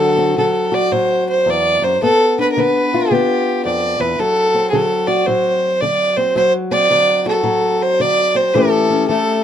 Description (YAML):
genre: acoustic country blues, solo or duo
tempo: 110 BPM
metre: 4/4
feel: swing 64% on 8ths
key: D mixolydian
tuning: A4 = 441 Hz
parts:
  - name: rich fiddle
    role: melody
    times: 0.0-9.4 s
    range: G4 to D5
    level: -15 LUFS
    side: right 1 dB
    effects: none
  - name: fingerpicked old ladder-braced acoustic guitar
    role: accompaniment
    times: 0.0-9.4 s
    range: D2 to G4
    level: -18 LUFS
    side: left 3 dB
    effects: none
room: light reverb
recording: dark, warm production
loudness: -13 LUFS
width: side -9 dB against mid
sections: 0.0-9.4 A section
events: none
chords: 0.0 D7; 2.0 G7; 4.2 D7; 8.5 A7